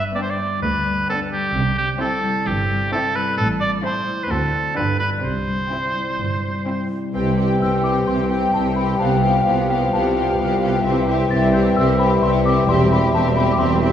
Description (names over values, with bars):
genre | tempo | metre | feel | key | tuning
cinematic, playful, whimsical film cue | 130 BPM | 4/4 | straight | C major from 3.4 s | A4 = 440 Hz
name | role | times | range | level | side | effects
bright oboe | second line | 0.0-6.9 s | G4 to D5 | -22 LUFS | right 1 dB | none
concert harp | arpeggios | 0.0-13.9 s | G2 to G5 | -26 LUFS | left 2 dB | none
rich studio cello section | bass | 0.0-13.9 s | D2 to C3 | -26 LUFS | right 3 dB | none
warm studio double bass section | bass | 0.0-13.9 s | E1 to D2 | -26 LUFS | right 2 dB | none
dark studio violin section | melody | 0.2-13.9 s | E5 to A5 | -29 LUFS | left 3 dB | none
rich studio violin section | second line | 0.2-13.9 s | D4 to G4 | -28 LUFS | left 4 dB | none
warm chamber viola section | accompaniment | 0.2-13.9 s | B3 to D4 | -28 LUFS | right 2 dB | none
mellow hollow concert flute | second line | 7.1-13.9 s | G5 | -26 LUFS | left 3 dB | none
mellow bassoon | accompaniment | 7.1-13.9 s | E3 to G3 | -26 LUFS | equal | none
warm French horn section | sustained chords | 7.1-13.9 s | G3 to G4 | -25 LUFS | left 3 dB | none
warm tuba | bass | 7.1-13.9 s | E1 to C2 | -25 LUFS | right 3 dB | none
worn celesta | melody | 7.6-13.9 s | F5 to A6 | -24 LUFS | left 4 dB | none
room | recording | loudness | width
wet scoring stage reverb, RT60 1.8 s | heard from further back in the room | -17 LUFS | side -9 dB against mid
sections
0.0-7.1 A section; 7.1-13.9 B section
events
none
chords
0.0 G; 1.6 C; 3.4 Am; 4.3 D7; 4.8 G7; 5.2 C; 9.0 G9/C; 10.8 C; 12.7 C/E